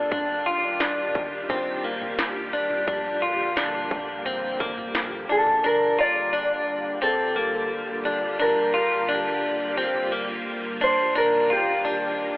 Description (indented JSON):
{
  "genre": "dream pop",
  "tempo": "87 BPM",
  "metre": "4/4",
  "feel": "straight",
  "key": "G minor",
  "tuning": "A4 = 440 Hz",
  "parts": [
    { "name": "string machine, violas", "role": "sustained chords", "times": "0.0-12.4 s", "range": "D3 to G4", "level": "-31 LUFS", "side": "equal", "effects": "phaser, ensemble chorus, low-pass filter" },
    { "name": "clean electric guitar", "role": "arpeggios", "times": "0.0-12.4 s", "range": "Bb3 to F4", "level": "-25 LUFS", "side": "left 1 dB", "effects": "lush chorus, low-pass filter, tape echo" },
    { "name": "sub bass with octave", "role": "bass", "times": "0.0-5.6 s", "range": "D1 to Bb1", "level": "-52 LUFS", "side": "equal", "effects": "none" },
    { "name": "industrial drum kit", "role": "drums", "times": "0.1-5.6 s", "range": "kick drum, snare drum, toms", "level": "-29 LUFS", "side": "equal", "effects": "distortion" },
    { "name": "mellow electric guitar", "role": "melody", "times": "5.3-12.4 s", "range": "G4 to D5", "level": "-22 LUFS", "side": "equal", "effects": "tape echo" }
  ],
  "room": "wet lush hall reverb, RT60 3.4 s",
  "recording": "telephone sound",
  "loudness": "-21 LUFS",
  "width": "side -21 dB against mid",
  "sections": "0.0-5.6 A section; 5.6-12.4 B section",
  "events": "none",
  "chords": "0.1 Ebmaj9; 2.9 Bb6; 5.6 Gm9; 11.2 Ebmaj9"
}